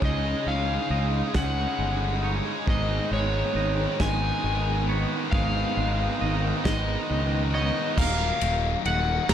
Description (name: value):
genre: post-rock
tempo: 45 BPM (dotted quarters)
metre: 6/8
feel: straight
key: unclear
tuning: A4 = 440 Hz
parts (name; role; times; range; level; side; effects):
- overdriven slide guitar; melody; 0.0-9.3 s; Db5 to Bb5; -30 LUFS; left 2 dB; slapback echo
- dark studio string section; sustained chords; 0.0-9.3 s; Eb3 to Eb5; -40 LUFS; left 2 dB; none
- twangy electric guitar; arpeggios; 0.0-8.0 s; Ab2 to Eb4; -34 LUFS; left 2 dB; slapback echo
- twangy electric guitar; arpeggios; 0.0-9.3 s; Ab4 to Gb5; -37 LUFS; right 6 dB; slapback echo
- distorted electric guitar; riff; 0.0-9.3 s; Eb2 to Eb4; -33 LUFS; left 14 dB; overdrive
- thick fuzz guitar; riff; 0.0-8.0 s; Cb4 to Ab4; -31 LUFS; right 14 dB; distortion
- fuzz fingered electric bass; bass; 0.0-9.3 s; Eb1 to Db2; -27 LUFS; equal; overdrive
- loose indie drum kit; drums; 0.0-9.3 s; crash cymbal, kick drum, ride cymbal, snare drum; -27 LUFS; equal; none
room: light reverb, small room ambience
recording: dark, warm production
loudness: -23 LUFS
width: side -9 dB against mid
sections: 0.0-8.0 A section; 8.0-9.3 B section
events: build-up 0.0-8.0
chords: 0.0 Dbsus2; 2.7 Abm; 8.0 Ebmadd9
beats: | 0.03 1.36 | 2.68 4.01 | 5.33 6.65 | 7.97 9.29